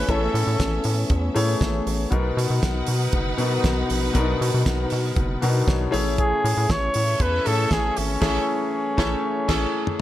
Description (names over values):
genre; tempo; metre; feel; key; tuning
disco; 118 BPM; 4/4; straight; unclear; A4 = 444 Hz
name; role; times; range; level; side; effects
warm flugelhorn; melody; 0.0-1.1, 6.2-10.0 s; C#4 to C#5; -25 LUFS; equal; none
clear studio string section; second line; 0.0-9.7 s; A3 to F#5; -31 LUFS; right 1 dB; none
warm concert grand piano; accompaniment; 0.0-10.0 s; B2 to F#5; -26 LUFS; left 3 dB; none
dark French horn section; sustained chords; 0.0-10.0 s; E3 to D#4; -32 LUFS; left 1 dB; none
rubbery square bass; bass; 0.0-9.7 s; F#1 to B2; -24 LUFS; equal; none
damped 70s drum kit; drums; 0.1-10.0 s; crash cymbal, hi-hat, kick drum, snare drum, toms; -26 LUFS; right 1 dB; none
room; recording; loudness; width
light reverb, studio ambience; none; -20 LUFS; side -13 dB against mid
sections
0.0-10.0 A section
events
grand piano fill 5.2-6.2; band accent 8.2-10.0; drum fill 9.2-10.0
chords
0.0 Amaj7; 2.1 Bmaj7; 5.9 Amaj7